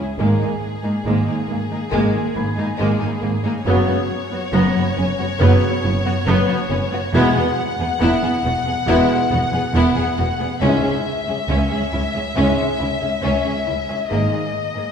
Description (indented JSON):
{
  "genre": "cinematic",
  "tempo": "69 BPM",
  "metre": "4/4",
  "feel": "straight",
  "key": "unclear",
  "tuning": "A4 = 440 Hz",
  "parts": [
    { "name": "warm chamber violin section", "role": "melody", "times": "0.0-14.9 s", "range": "Ab4 to F#5", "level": "-25 LUFS", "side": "left 4 dB", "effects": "none" },
    { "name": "rich symphonic violin section", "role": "second line", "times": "0.0-14.8 s", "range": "Ab3 to G#4", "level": "-26 LUFS", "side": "left 2 dB", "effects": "none" },
    { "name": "warm symphonic viola section", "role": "accompaniment", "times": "0.0-14.8 s", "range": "Bb3 to Db4", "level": "-24 LUFS", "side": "equal", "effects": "none" },
    { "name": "rich studio cello section", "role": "bass", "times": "0.0-14.8 s", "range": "Db2 to Ab2", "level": "-23 LUFS", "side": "right 1 dB", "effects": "none" },
    { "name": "clear trombone section", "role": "sustained chords", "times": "0.2-14.4 s", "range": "Ab2 to G#3", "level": "-26 LUFS", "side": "right 3 dB", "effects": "none" },
    { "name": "mellow French horn section", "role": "sustained chords", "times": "0.2-14.4 s", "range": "Bb3 to Bb4", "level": "-26 LUFS", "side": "left 2 dB", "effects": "none" },
    { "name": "warm symphonic double bass section", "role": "bass", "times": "0.2-14.2 s", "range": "E1 to Db2", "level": "-23 LUFS", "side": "right 2 dB", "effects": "none" },
    { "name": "bright concert grand piano", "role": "texture", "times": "2.4-10.6 s", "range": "Bb5 to Bb6", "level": "-34 LUFS", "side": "equal", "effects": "none" }
  ],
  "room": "wet scoring stage reverb, RT60 1.7 s",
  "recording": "heard from further back in the room",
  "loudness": "-16 LUFS",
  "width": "side -7 dB against mid",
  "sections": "0.0-14.9 A section",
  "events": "none",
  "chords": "0.2 Absus2; 3.7 Gbsus4; 7.1 Eadd9; 10.6 Dbm; 14.1 Absus2"
}